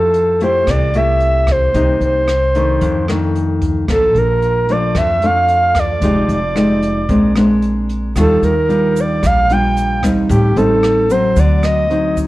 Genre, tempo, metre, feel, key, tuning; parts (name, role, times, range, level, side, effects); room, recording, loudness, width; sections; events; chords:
bossa nova; 112 BPM; 4/4; straight; F major; A4 = 445 Hz
breathy flute-like synth lead; melody; 0.0-12.2 s; G4 to G5; -15 LUFS; right 1 dB; chorus
nylon-string guitar; accompaniment; 0.0-12.3 s; F2 to G4; -17 LUFS; left 1 dB
upright bass; bass; 0.0-12.3 s; F1 to F2; -18 LUFS; equal
jazz brush drum kit; drums; 0.1-12.3 s; hi-hat, kick drum, rim click; -23 LUFS; equal
egg shaker; percussion; 8.2-12.3 s; -39 LUFS; right 7 dB
light reverb; worn, warbling old tape, cassette tape, warbly pitch drift; -12 LUFS; side -17 dB against mid
0.0-12.3 A section
0.0 Fmaj9; 1.7 Cm7; 2.8 F6; 3.9 Bbmaj7; 6.0 Fm9; 7.1 Bb9; 8.2 Ebmaj9; 10.3 Am7b5; 11.4 D7b9